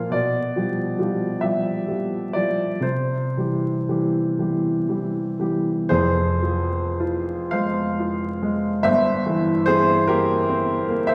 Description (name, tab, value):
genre	classical, romantic nocturne for solo piano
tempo	35-51 BPM (dotted quarters)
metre	6/8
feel	rubato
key	F minor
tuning	A4 = 439 Hz
part	warm upright piano	solo	0.0-11.1 s	F1 to F5	-22 LUFS	equal	none
room	wet recital hall reverb, RT60 1.6 s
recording	heard from further back in the room, vinyl crackle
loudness	-22 LUFS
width	mono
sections	0.0-5.9 A section; 5.9-11.1 B section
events	none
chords	0.1 G7/B; 2.9 C; 5.9 Fm; 8.9 C7/G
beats	| 0.14 1.43 | 2.86 4.39 | 5.92 7.54 | 8.85 10.09